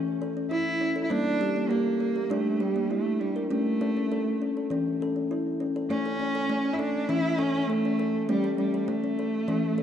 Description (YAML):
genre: world meditative, meditative tuned percussion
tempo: 100 BPM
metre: 4/4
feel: straight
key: unclear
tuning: A4 = 440 Hz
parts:
  - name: kalimba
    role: arpeggios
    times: 0.0-9.8 s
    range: E3 to Bb4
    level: -27 LUFS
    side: left 2 dB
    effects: tape echo
  - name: rich cello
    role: melody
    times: 0.5-9.8 s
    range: G3 to E4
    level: -28 LUFS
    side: right 2 dB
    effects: tape echo
room: wet concert hall reverb, RT60 1.8 s, small room ambience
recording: dark, warm production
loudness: -25 LUFS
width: side -9 dB against mid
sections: 0.0-5.9 A section; 5.9-9.8 B section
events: none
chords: 0.0 A; 1.1 Gm; 3.5 A